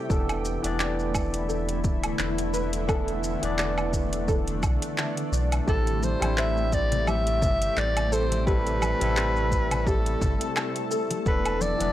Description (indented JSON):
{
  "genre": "sunset chillout",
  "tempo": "86 BPM",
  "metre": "4/4",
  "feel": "swing 56% on 16ths",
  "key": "A minor",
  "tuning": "A4 = 440 Hz",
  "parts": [
    { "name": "barky tine electric piano", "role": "accompaniment", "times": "0.0-11.9 s", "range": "E3 to D5", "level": "-31 LUFS", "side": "equal", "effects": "auto-pan, analog delay" },
    { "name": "shimmering ambient pad", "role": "sustained chords", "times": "0.0-11.9 s", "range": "C3 to A4", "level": "-32 LUFS", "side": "left 1 dB", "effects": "chorus, built-in reverb" },
    { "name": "soft round pluck", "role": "arpeggios", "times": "0.0-11.6 s", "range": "G4 to D5", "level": "-35 LUFS", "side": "right 1 dB", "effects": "ensemble chorus, vintage 12-bit sampler grit, analog delay" },
    { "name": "round analog bass", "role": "bass", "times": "0.1-11.9 s", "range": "D1 to B1", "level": "-28 LUFS", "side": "equal", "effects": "none" },
    { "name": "deep house drum kit", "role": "drums", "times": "0.1-11.9 s", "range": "handclaps, hi-hat, shaker, woodblock", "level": "-31 LUFS", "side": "right 1 dB", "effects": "studio reverb" },
    { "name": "electronic kick drum", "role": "drums", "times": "0.1-11.4 s", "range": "none", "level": "-27 LUFS", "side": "equal", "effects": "studio reverb" },
    { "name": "warm soprano saxophone", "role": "melody", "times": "5.7-11.9 s", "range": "A4 to E5", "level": "-28 LUFS", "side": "equal", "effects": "none" },
    { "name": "congas", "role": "percussion", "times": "6.0-11.9 s", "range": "none", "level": "-34 LUFS", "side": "left 2 dB", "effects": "none" }
  ],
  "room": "digital ambience",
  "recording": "dry, gritty hardware recording",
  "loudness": "-23 LUFS",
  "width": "side -13 dB against mid",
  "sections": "0.0-11.9 A section",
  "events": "none",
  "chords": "0.1 E7sus4; 5.7 Am7; 11.3 E7sus4"
}